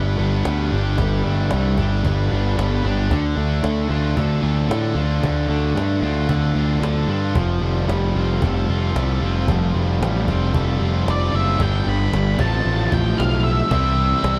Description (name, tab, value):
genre	classic rock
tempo	113 BPM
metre	4/4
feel	straight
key	unclear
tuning	A4 = 440 Hz
part	cranked stack guitar	riff	0.0-14.4 s	G2 to G4	-27 LUFS	equal	overdrive
part	tight distorted guitar	riff	0.0-14.4 s	F2 to B4	-30 LUFS	equal	distortion
part	fuzz picked electric bass	bass	0.0-14.4 s	F1 to A2	-22 LUFS	equal	overdrive
part	cajon	drums	0.2-14.4 s	none	-28 LUFS	equal	none
part	octave-fuzz lead guitar	melody	11.1-14.4 s	D5 to B5	-26 LUFS	equal	distortion
room	light reverb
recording	none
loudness	-20 LUFS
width	mono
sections	0.0-11.6 A section; 11.6-14.4 B section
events	none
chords	0.0 Gadd9; 3.1 Dm; 7.4 Fadd9; 11.6 G; 12.4 F/A; 13.7 C